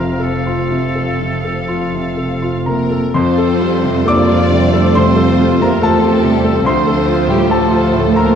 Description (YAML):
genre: classical, romantic movement for piano and orchestra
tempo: 60-72 BPM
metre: 4/4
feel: rubato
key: F major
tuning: A4 = 440 Hz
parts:
  - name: clear concert grand piano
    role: melody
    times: 0.0-8.4 s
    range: D2 to D6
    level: -16 LUFS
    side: left 2 dB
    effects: none
  - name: rich symphonic violin section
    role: melody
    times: 0.0-8.4 s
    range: G4 to F5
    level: -24 LUFS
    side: left 3 dB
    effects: none
  - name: clear oboe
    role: second line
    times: 0.0-2.7 s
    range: A4 to Bb4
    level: -25 LUFS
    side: equal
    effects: none
  - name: warm symphonic violin section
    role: second line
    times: 0.0-8.4 s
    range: C4 to C5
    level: -22 LUFS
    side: equal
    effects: none
  - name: rich symphonic viola section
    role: accompaniment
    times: 0.0-8.4 s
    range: F3 to C4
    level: -18 LUFS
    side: equal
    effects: none
  - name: dark symphonic cello section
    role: bass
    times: 0.0-8.4 s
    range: F2 to D4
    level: -21 LUFS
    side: right 3 dB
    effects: none
  - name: rich symphonic double bass section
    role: bass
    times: 0.0-8.4 s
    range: F1 to F2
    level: -19 LUFS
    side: right 3 dB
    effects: none
room: moderate scoring stage reverb, RT60 1.7 s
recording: dark, warm production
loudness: -11 LUFS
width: side -8 dB against mid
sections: 0.0-3.2 A section; 3.2-8.4 A section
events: none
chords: 0.0 F; 6.7 Dm7